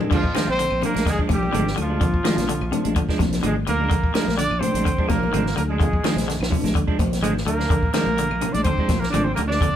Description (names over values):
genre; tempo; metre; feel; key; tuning
afrobeat; 126 BPM; 4/4; swing 54% on 16ths; Bb mixolydian; A4 = 440 Hz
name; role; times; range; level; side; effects
bell-like tine electric piano; accompaniment; 0.0-9.7 s; C3 to F4; -30 LUFS; right 2 dB; none
clean electric guitar; stabs; 0.0-9.8 s; F3 to D4; -28 LUFS; right 3 dB; none
fingered electric bass; bass; 0.0-9.8 s; Ab1 to D2; -26 LUFS; equal; none
compact cocktail drum kit; drums; 0.0-9.8 s; crash cymbal, hi-hat, kick drum, snare drum, toms; -24 LUFS; equal; none
congas; percussion; 0.0-9.7 s; none; -28 LUFS; left 4 dB; none
warm trumpet; melody; 0.1-9.8 s; F4 to D5; -26 LUFS; right 1 dB; none
clear alto saxophone; second line; 0.1-9.8 s; F3 to D4; -30 LUFS; right 2 dB; none
semi-hollow electric guitar; arpeggios; 0.1-9.7 s; C3 to Eb3; -29 LUFS; left 2 dB; none
claves; percussion; 0.3-9.5 s; none; -42 LUFS; left 5 dB; none
room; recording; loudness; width
light reverb; band playing live in one room; -19 LUFS; side -10 dB against mid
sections
0.1-9.8 A section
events
none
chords
0.1 Bb7